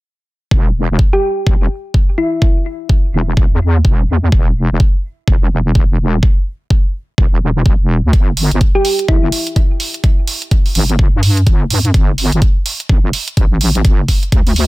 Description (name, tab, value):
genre	bass house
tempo	126 BPM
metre	4/4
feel	swing 60% on 16ths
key	unclear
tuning	A4 = 440 Hz
part	wobble bass	bass	0.5-14.7 s	E1 to G2	-14 LUFS	equal	chorus, overdrive, sidechain pumping
part	electronic kick drum	drums	0.5-14.4 s	none	-12 LUFS	equal	none
part	thumb-piano-like synth pluck	melody	1.1-2.6, 8.8-9.5 s	E4 to G4	-18 LUFS	equal	chorus, ping-pong delay
part	electronic hi-hat	drums	8.1-14.7 s	none	-20 LUFS	right 4 dB	overdrive
room	digital ambience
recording	none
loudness	-11 LUFS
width	side -20 dB against mid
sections	0.5-14.7 A section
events	none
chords	0.5 N.C.; 8.1 G5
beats	| 0.51 0.99 1.47 1.94 | 2.42 2.89 3.37 3.85 | 4.32 4.80 5.28 5.75 | 6.23 6.70 7.18 7.66 | 8.13 8.61 9.09 9.56 | 10.04 10.51 10.99 11.47 | 11.94 12.42 12.89 13.37 | 13.85 14.32